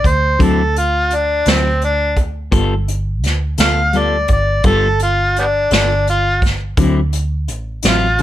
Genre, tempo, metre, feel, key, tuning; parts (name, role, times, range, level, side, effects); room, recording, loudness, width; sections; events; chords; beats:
slow blues; 56 BPM (dotted quarters); 12/8; straight; A4 = 440 Hz
overdriven harmonica; melody; 0.0-8.2 s; G3 to F5; -16 LUFS; equal
vintage muted fingered electric bass; bass; 0.0-8.2 s; G1 to D2; -18 LUFS; right 1 dB
vintage brush drum kit; drums; 0.0-8.2 s; hi-hat, kick drum, snare drum; -16 LUFS; equal
clean electric guitar; accompaniment; 0.4-8.2 s; D3 to A4; -19 LUFS; left 3 dB; harmonic tremolo
light reverb; -13 LUFS; side -13 dB against mid
0.0-8.2 A section
harmonica solo 0.0-8.2
0.0 D9; 2.5 G9; 6.8 D9
0.40 1.46 | 2.53 3.59 4.66 5.72 | 6.78 7.84